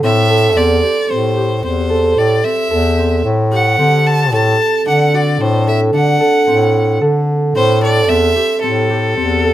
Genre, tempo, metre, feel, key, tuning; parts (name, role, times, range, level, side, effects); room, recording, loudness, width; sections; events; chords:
contemporary instrumental, chamber music in an uneven meter; 112 BPM; 7/4; straight; A dorian; A4 = 440 Hz
bright violin; melody; 0.0-9.5 s; A4 to A5; -17 LUFS; equal
concert harp; arpeggios; 0.0-9.5 s; C4 to A4; -15 LUFS; right 2 dB
warm bass clarinet; bass; 0.0-9.5 s; E2 to D3; -15 LUFS; left 1 dB
light reverb; -11 LUFS; side -13 dB against mid
0.0-9.5 A section
0.0 Am7; 3.8 D7; 7.6 Am7